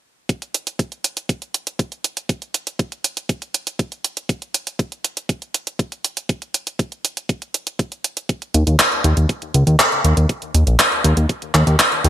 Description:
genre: italo disco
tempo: 120 BPM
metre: 4/4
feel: straight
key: unclear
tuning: A4 = 440 Hz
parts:
  - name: clean 12-bit digital drum machine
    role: drums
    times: 0.3-12.1 s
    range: handclaps, hi-hat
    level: -18 LUFS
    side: right 1 dB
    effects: gated reverb
  - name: electronic kick drum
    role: drums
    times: 0.3-11.9 s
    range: none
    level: -20 LUFS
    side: equal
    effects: high-pass filter on kick
  - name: fat analog bass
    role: bass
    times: 8.5-12.1 s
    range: Bb1 to Eb2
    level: -15 LUFS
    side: equal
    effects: none
room: light reverb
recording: bright 1980s-style digital production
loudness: -18 LUFS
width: side -12 dB against mid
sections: 0.3-12.1 A section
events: none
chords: none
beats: | 0.29 0.79 1.29 1.79 | 2.29 2.79 3.29 3.79 | 4.29 4.79 5.29 5.79 | 6.29 6.79 7.29 7.79 | 8.29 8.79 9.29 9.79 | 10.29 10.79 11.29 11.79

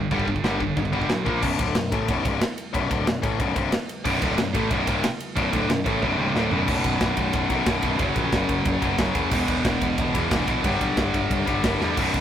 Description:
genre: heavy metal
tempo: 182 BPM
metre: 4/4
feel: straight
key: B minor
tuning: A4 = 442 Hz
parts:
  - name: scooped high-gain guitar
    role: riff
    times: 0.0-1.4, 4.0-12.2 s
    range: B1 to A#3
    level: -27 LUFS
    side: right 6 dB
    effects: distortion
  - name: tight distorted guitar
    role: riff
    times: 0.0-12.2 s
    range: B1 to A#3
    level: -25 LUFS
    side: left 5 dB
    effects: distortion
  - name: overdriven picked electric bass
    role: bass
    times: 0.0-12.2 s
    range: B0 to E2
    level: -28 LUFS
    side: right 1 dB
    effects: none
  - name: modern studio drum kit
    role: drums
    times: 0.1-12.2 s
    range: china cymbal, crash cymbal, kick drum, ride cymbal, snare drum, toms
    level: -26 LUFS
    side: right 1 dB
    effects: none
room: moderate studio reverb, RT60 0.5 s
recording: rough rehearsal-room recording, tube saturation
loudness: -21 LUFS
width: side -10 dB against mid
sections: 0.0-1.4 A section; 1.4-6.7 B section; 6.7-12.2 C section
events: drum fill 6.0-6.7, 11.8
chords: 0.0 G5; 1.3 A#5; 1.4 Bm; 6.7 B5; 8.0 F#5; 9.3 E5; 10.6 G5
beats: | 0.11 0.44 0.77 1.10 | 1.43 1.76 2.09 2.42 | 2.74 3.07 3.40 3.73 | 4.05 4.38 4.71 5.04 | 5.37 5.70 6.02 6.35 | 6.68 7.01 7.34 7.67 | 8.00 8.33 8.66 8.99 | 9.32 9.65 9.98 10.31 | 10.64 10.97 11.30 11.64 | 11.97

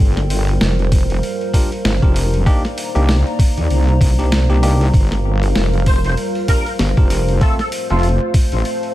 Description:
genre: glitch hop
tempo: 97 BPM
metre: 4/4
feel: swing 58% on 16ths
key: G minor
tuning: A4 = 440 Hz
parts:
  - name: dark analog pad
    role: sustained chords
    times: 0.0-8.9 s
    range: G3 to D5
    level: -26 LUFS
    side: right 2 dB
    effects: chorus, vintage 12-bit sampler grit, sidechain pumping
  - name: wobble bass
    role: bass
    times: 0.0-8.6 s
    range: F1 to Eb2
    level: -15 LUFS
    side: equal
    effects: chorus, tube saturation
  - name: warbly tape-like pad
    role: texture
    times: 0.0-8.9 s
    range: C5 to Bb5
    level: -26 LUFS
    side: left 1 dB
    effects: chorus, built-in reverb, sidechain pumping
  - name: boom bap sampler-style drum kit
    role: drums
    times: 0.2-8.9 s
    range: hi-hat, snare drum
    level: -24 LUFS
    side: equal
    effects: none
  - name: electronic kick drum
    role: drums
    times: 0.9-8.5 s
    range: none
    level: -14 LUFS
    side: equal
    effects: none
  - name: bell-like tine electric piano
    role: stabs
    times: 1.5-8.1 s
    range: A3 to Bb4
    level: -25 LUFS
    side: left 1 dB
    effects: sidechain pumping, ping-pong delay
  - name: sync lead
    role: melody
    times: 5.9-8.1 s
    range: F4 to C5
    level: -25 LUFS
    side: left 1 dB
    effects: ensemble chorus, ping-pong delay
room: little or no reverb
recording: none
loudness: -13 LUFS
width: side -15 dB against mid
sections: 0.0-8.9 A section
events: none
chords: 0.0 Gm7; 2.5 Cm9; 4.9 Gm7; 7.4 F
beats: 0.61 1.23 1.85 | 2.47 3.08 3.70 4.32 | 4.94 5.56 6.18 6.80 | 7.41 8.03 8.65

